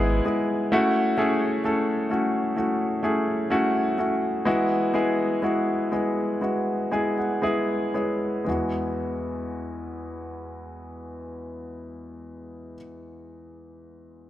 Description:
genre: pop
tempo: 57-65 BPM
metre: 4/4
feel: straight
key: E major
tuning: A4 = 441 Hz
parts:
  - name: clear grand piano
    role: accompaniment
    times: 0.0-14.3 s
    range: E2 to G#5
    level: -24 LUFS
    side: equal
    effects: none
room: moderate plate reverb, RT60 2.8 s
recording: none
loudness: -22 LUFS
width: side -13 dB against mid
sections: 0.0-8.5 A section; 8.5-12.7 B section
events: grand piano fill 0.0-0.7, 6.4-8.5; slowing down 0.7-8.5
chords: 0.0 E/G#; 0.7 F#m7; 4.5 Eadd9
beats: | 0.71 1.64 2.57 3.51 | 4.46 5.43 6.42 7.43 | 8.47 9.52 10.57 11.62

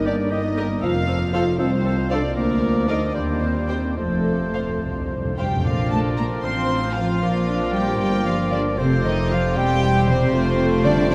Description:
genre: quick classical-period movement for symphony orchestra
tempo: 77 BPM (dotted quarters)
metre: 6/8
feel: rubato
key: Bb major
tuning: A4 = 440 Hz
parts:
  - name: bright clarinet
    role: second line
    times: 0.0-11.1 s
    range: F4 to F5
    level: -34 LUFS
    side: equal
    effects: none
  - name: dark studio violin section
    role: second line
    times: 0.0-11.1 s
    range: C4 to F5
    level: -34 LUFS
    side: equal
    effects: none
  - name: mellow hollow silver concert flute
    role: second line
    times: 0.0-11.1 s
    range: A4 to C6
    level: -34 LUFS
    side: equal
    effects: none
  - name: dark French horn section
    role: sustained chords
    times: 0.0-11.1 s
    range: F3 to F4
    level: -30 LUFS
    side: equal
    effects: none
  - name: bright oboe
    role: second line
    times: 0.1-11.1 s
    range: G4 to F5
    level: -34 LUFS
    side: equal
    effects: none
  - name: mellow bassoon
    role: accompaniment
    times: 0.1-11.1 s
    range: Eb3 to A3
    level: -33 LUFS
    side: equal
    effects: none
  - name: rich studio double bass section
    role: bass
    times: 0.1-11.1 s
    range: E1 to Eb2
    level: -28 LUFS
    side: equal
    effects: none
  - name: warm studio cello section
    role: bass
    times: 0.1-11.1 s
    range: C2 to C4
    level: -27 LUFS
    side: equal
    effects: none
  - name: warm studio violin section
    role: melody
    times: 0.6-11.1 s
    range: C5 to C6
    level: -30 LUFS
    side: equal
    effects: none
  - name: warm studio viola section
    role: accompaniment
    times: 0.6-11.1 s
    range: G3 to Eb5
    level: -33 LUFS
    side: equal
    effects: none
  - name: timpani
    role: percussion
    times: 0.8-1.6, 4.0-6.4 s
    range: F2 to Bb2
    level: -32 LUFS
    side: equal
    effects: none
room: wet huge ambient reverb, RT60 7.8 s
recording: in a vast, echoing space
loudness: -21 LUFS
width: mono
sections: 0.0-5.7 A section; 5.7-11.1 B section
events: timpani fill 4.0-5.7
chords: 0.0 Eb/G; 0.8 F; 2.4 Bb/D; 3.1 Cm/Eb; 4.0 F; 5.7 Bb; 6.4 F/A; 7.2 Bb; 8.8 F; 9.6 C/E; 10.3 F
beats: 0.06 | 0.83 1.59 | 2.36 3.15 | 3.98 4.82 | 5.66 6.45 | 7.23 8.00 | 8.79 9.56 | 10.34 11.11

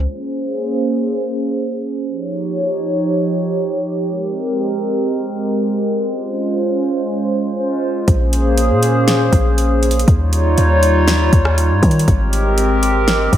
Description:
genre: hip hop, atmospheric cloud-rap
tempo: 120 BPM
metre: 4/4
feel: half-time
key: Bb dorian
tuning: A4 = 440 Hz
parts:
  - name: hollow soft pad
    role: sustained chords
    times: 0.0-13.4 s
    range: F3 to Db5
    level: -17 LUFS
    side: right 1 dB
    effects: chorus, sidechain pumping
  - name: warm 808-style bass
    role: bass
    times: 0.0-0.1, 8.1-13.4 s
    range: Ab1 to Eb3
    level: -15 LUFS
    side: equal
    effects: none
  - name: smooth R&B drum kit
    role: drums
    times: 0.1-0.3, 8.1-13.4 s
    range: hi-hat, kick drum, rim click, snare drum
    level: -17 LUFS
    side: equal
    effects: none
room: light reverb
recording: low-pass filter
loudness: -14 LUFS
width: side -11 dB against mid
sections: 0.1-8.1 A section; 8.1-13.4 B section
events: filter sweep 0.1-8.1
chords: 0.1 Bbm9; 2.1 Eb9; 4.1 Abmaj9; 6.1 Dbmaj7; 8.1 Bbm9; 10.1 Eb9; 12.1 Abmaj9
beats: | 0.08 0.58 1.08 1.58 | 2.08 2.58 3.08 3.58 | 4.08 4.58 5.08 5.58 | 6.08 6.58 7.08 7.58 | 8.08 8.58 9.08 9.58 | 10.08 10.58 11.08 11.58 | 12.08 12.58 13.08

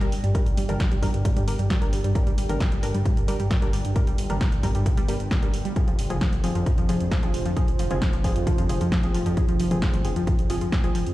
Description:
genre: driving peak-time techno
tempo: 133 BPM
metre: 4/4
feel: straight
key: G phrygian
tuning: A4 = 440 Hz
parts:
  - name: warbly dusty pluck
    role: riff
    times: 0.0-11.0 s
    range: F3 to G3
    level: -30 LUFS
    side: equal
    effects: chorus, tube saturation, sidechain pumping, ping-pong delay
  - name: filtered dub chord stab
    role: stabs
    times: 0.0-10.9 s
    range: F3 to Bb4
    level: -34 LUFS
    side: left 1 dB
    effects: chorus, sidechain pumping, ping-pong delay
  - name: dark detuned saw bass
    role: bass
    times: 0.0-11.1 s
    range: F1 to G2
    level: -28 LUFS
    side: equal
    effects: sidechain pumping
  - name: deep dark ambient pad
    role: drone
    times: 0.0-11.1 s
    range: G2 to D3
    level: -36 LUFS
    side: equal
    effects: none
  - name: techno drum kit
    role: drums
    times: 0.0-11.1 s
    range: hi-hat, snare drum, toms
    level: -32 LUFS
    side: equal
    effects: sidechain pumping on hats, sidechain pumping on toms, sidechain pumping on cymbals
  - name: deep dark ambient pad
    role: texture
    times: 0.0-11.1 s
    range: F4 to G5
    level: -35 LUFS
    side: right 3 dB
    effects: chorus, built-in reverb, sidechain pumping
  - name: electronic kick drum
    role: drums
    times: 0.3-10.8 s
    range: none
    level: -23 LUFS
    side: equal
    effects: none
room: little or no reverb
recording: played on a big sound system in a bare room, stone room reverb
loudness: -21 LUFS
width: side -16 dB against mid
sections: 0.0-11.1 A section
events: none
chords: 0.0 Gm; 5.8 Fm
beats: | 0.35 0.80 1.25 1.70 | 2.15 2.60 3.06 3.51 | 3.96 4.41 4.86 5.31 | 5.76 6.21 6.66 7.12 | 7.57 8.02 8.47 8.92 | 9.37 9.82 10.27 10.72

